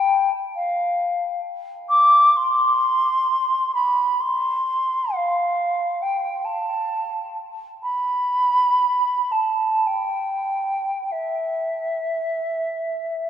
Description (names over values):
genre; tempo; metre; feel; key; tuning
classical, free, expressive piece for unaccompanied flute; free time; none; none; C major; A4 = 439 Hz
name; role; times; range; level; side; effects
mellow hollow silver concert flute; solo; 0.0-13.3 s; E5 to D6; -19 LUFS; equal; none
room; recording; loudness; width
wet cathedral reverb, RT60 4.3 s; none; -19 LUFS; side -10 dB against mid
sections
0.0-13.3 A section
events
none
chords
none